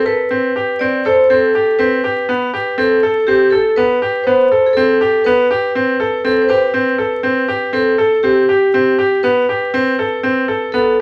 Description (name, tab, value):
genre	contemporary instrumental, chamber music in an uneven meter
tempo	121 BPM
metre	7/4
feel	straight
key	A minor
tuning	A4 = 440 Hz
part	vibraphone with medium hard mallets	second line	0.0-11.0 s	G4 to D5	-16 LUFS	equal	none
part	bright baby grand piano	arpeggios	0.1-10.9 s	B3 to A4	-19 LUFS	equal	none
room	wet studio reverb, RT60 0.6 s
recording	vinyl crackle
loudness	-14 LUFS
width	mono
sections	0.0-11.0 A section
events	none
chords	0.0 Am9